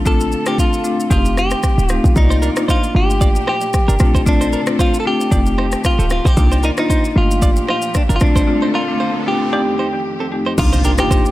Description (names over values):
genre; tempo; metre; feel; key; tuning
afrobeats; 114 BPM; 4/4; swing 55% on 16ths; unclear; A4 = 441 Hz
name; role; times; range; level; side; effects
warm studio string section; sustained chords; 0.0-11.3 s; F2 to D5; -29 LUFS; equal; none
short 808-style bass; bass; 0.0-11.0 s; D1 to C2; -16 LUFS; equal; none
direct-recorded clean electric guitar; melody; 0.1-11.3 s; D4 to A4; -20 LUFS; equal; dub echo
marimba with medium mallets; accompaniment; 0.1-11.2 s; F2 to D5; -20 LUFS; left 3 dB; dub echo
deep house drum kit; drums; 0.1-11.3 s; crash cymbal, kick drum, rim click, shaker; -17 LUFS; equal; none
direct-recorded clean electric guitar; riff; 2.3-11.2 s; C4 to D5; -26 LUFS; right 4 dB; dub echo
riser and impact; sound effects; 7.8-11.3 s; none; -27 LUFS; right 1 dB; none
room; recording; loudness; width
light reverb; echo-heavy mix; -13 LUFS; side -16 dB against mid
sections
0.0-10.6 A section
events
riser 7.8-10.6; break 8.5-10.6; impact 10.6-11.3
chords
0.0 Bbmaj7; 1.1 F9; 2.2 Cm11; 2.9 Gm7; 4.0 Bbmaj7; 5.3 F9; 6.4 Cm11; 7.2 Gm7; 8.2 Bbmaj7; 9.5 F9; 10.6 Cm11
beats
| 0.05 0.58 1.11 1.63 | 2.16 2.69 3.21 3.74 | 4.26 4.79 5.32 5.84 | 6.37 6.90 7.42 7.95 | 8.47 9.00 9.53 10.05 | 10.58 11.11